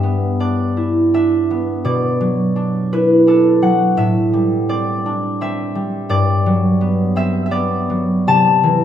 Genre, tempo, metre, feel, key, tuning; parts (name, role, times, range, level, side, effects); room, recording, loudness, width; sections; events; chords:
classical, solo harp piece; 84 BPM; 3/4; rubato; G major; A4 = 441 Hz
concert harp; solo; 0.0-8.8 s; G2 to A5; -14 LUFS; equal
wet recital hall reverb, RT60 1.5 s; -14 LUFS; side -10 dB against mid
0.0-8.8 A section
0.0 G6; 1.9 Bm7; 4.0 Am7; 6.1 Gmaj9; 8.3 C69